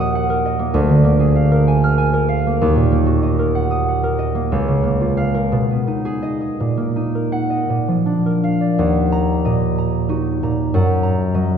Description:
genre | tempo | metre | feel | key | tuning
classical, solo harp piece | 54-67 BPM (dotted quarters) | 6/8 | rubato | Eb minor | A4 = 440 Hz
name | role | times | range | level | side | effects
concert harp | solo | 0.0-11.6 s | Db2 to F6 | -15 LUFS | right 1 dB | none
room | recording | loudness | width
wet concert hall reverb, RT60 2.3 s | recorded in a church or concert hall | -15 LUFS | side -7 dB against mid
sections
0.0-8.8 A section; 8.8-11.6 B section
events
none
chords
0.0 Ebm; 0.7 Bb7/D; 2.6 Ebm; 4.5 Bbm/Db; 5.5 Abm/Cb; 6.6 Ebm/Bb; 7.7 Bb; 8.8 Ebm; 10.7 Ebm/Gb

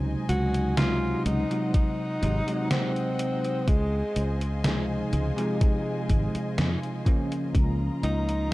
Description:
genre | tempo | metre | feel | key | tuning
vaporwave | 62 BPM | 4/4 | straight | unclear | A4 = 440 Hz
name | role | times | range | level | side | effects
bell-like tine electric piano | accompaniment | 0.0-8.5 s | C3 to Eb4 | -30 LUFS | equal | ensemble chorus
clear studio string section | sustained chords | 0.0-8.5 s | Gb3 to Bb5 | -38 LUFS | left 2 dB | vintage 12-bit sampler grit
fingered electric bass | bass | 0.0-8.5 s | Ab1 to F2 | -27 LUFS | equal | tube saturation
breathy tenor saxophone | melody | 0.3-8.5 s | Ab3 to Gb4 | -31 LUFS | left 1 dB | tape echo
gated 80s digital drum machine | drums | 0.3-8.5 s | hi-hat, snare drum | -29 LUFS | equal | gated reverb, gated reverb snare, overdrive
electronic kick drum | drums | 1.7-7.8 s | none | -23 LUFS | equal | overdrive
room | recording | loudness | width
little or no reverb | dark, warm production | -24 LUFS | side -18 dB against mid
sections
0.0-8.5 A section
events
none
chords
0.0 Ab7/Db; 3.7 Fm7/Db; 7.5 Db69

